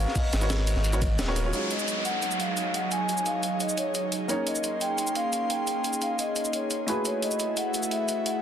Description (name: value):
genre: liquid drum and bass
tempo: 174 BPM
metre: 4/4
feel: straight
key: Eb minor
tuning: A4 = 441 Hz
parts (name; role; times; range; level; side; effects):
- vibraphone with soft mallets; melody; 0.0-8.4 s; Db5 to Ab5; -30 LUFS; equal; digital delay
- felt-muted upright piano; accompaniment; 0.0-8.4 s; Gb3 to Db5; -34 LUFS; equal; ping-pong delay
- warm sub bass; bass; 0.0-1.5 s; Eb1 to Ab1; -26 LUFS; equal; none
- crunchy breakbeat drum kit; drums; 0.1-1.4 s; hi-hat, ride cymbal, snare drum; -37 LUFS; equal; high-pass filter on cymbals, high-pass filter on hats, high-pass filter on snare, high-pass filter on room
- breakbeat sampler-style drum kit; drums; 0.2-8.3 s; cabasa, hi-hat, ride cymbal, snare drum; -32 LUFS; right 1 dB; none
- electronic kick drum; drums; 0.2-1.1 s; none; -27 LUFS; equal; none
- airy breathy pad; sustained chords; 1.5-8.4 s; Gb3 to C6; -32 LUFS; right 1 dB; chorus
- downlifter; sound effects; 1.5-4.3 s; none; -34 LUFS; equal; none
room: light reverb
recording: dense, heavily limited modern master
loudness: -25 LUFS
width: side -9 dB against mid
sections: 0.0-1.5 A section; 1.5-8.4 B section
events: drop 0.0-1.5; band accent 1.2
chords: 0.0 Abm11; 1.5 Ebm11; 4.3 Bbm11; 6.9 Gbm11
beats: | 0.16 0.50 0.84 1.19 | 1.53 1.88 2.23 2.57 | 2.91 3.26 3.60 3.95 | 4.29 4.64 4.98 5.33 | 5.67 6.02 6.36 6.71 | 7.05 7.40 7.74 8.09